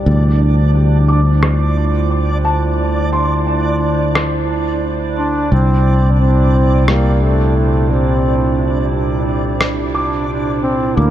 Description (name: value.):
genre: ambient dub.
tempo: 88 BPM.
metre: 4/4.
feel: swing 54% on 16ths.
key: unclear.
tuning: A4 = 440 Hz.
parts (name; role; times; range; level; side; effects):
warbly tape-like pad; sustained chords; 0.0-11.1 s; Bb2 to C5; -20 LUFS; right 3 dB; chorus, built-in reverb.
felt-muted upright piano; arpeggios; 0.0-11.1 s; G3 to D6; -24 LUFS; left 1 dB; low-pass filter, tape echo.
fingered electric bass; bass; 0.0-11.1 s; C2 to D2; -15 LUFS; equal; none.
backwards swelling texture; texture; 0.0-11.1 s; D4 to D5; -24 LUFS; right 2 dB; built-in reverb.
electronic rim click; drums; 1.4-9.8 s; none; -22 LUFS; equal; low-pass filter on snare, studio reverb.
warm trombone; melody; 5.2-11.1 s; A3 to D4; -20 LUFS; equal; tape echo.
room: light reverb, studio reverb.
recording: none.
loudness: -12 LUFS.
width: side -12 dB against mid.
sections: 0.0-11.1 A section.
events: filter sweep on drum 0.0-11.1.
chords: 0.1 Dm7; 5.5 C7.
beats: | 0.06 0.74 1.43 2.11 | 2.79 3.47 4.15 4.83 | 5.52 6.20 6.88 7.56 | 8.24 8.93 9.61 10.29 | 10.97.